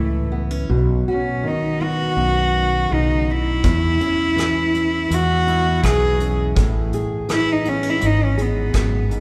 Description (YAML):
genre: acoustic folk-pop ballad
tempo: 82 BPM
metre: 4/4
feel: straight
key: unclear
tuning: A4 = 440 Hz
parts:
  - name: warm cello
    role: melody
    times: 0.0-9.1 s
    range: A3 to G#4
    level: -23 LUFS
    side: equal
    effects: none
  - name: fingerpicked steel-string acoustic guitar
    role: accompaniment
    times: 0.0-9.2 s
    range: E2 to G#4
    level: -26 LUFS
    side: equal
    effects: none
  - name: fretless electric bass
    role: bass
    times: 0.0-9.2 s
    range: G#1 to E2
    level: -24 LUFS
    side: equal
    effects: none
  - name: soft brush drum kit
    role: drums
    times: 3.6-9.2 s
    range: hi-hat, kick drum, rim click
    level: -25 LUFS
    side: equal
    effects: none
room: wet church reverb, RT60 3.3 s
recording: recorded in a church or concert hall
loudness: -19 LUFS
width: mono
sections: 0.0-9.2 A section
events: none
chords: 0.0 A; 0.7 B; 3.6 C#m/E; 5.1 C#m7/E; 6.6 Amaj7; 8.0 G#m7